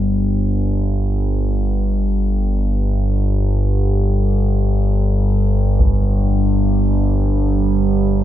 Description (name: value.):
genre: dark ambient drone.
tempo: free time.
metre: none.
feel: none.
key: unclear.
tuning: A4 = 440 Hz.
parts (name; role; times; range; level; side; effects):
analog drone; drone; 0.0-8.2 s; G1 to G2; -15 LUFS; equal; chorus.
taiko ensemble; percussion; 5.8-6.0 s; none; -20 LUFS; equal; none.
room: moderate huge ambient reverb, RT60 7.5 s.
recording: nothing above 10.4 kHz.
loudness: -15 LUFS.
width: side -12 dB against mid.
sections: 0.0-8.2 A section.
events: none.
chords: none.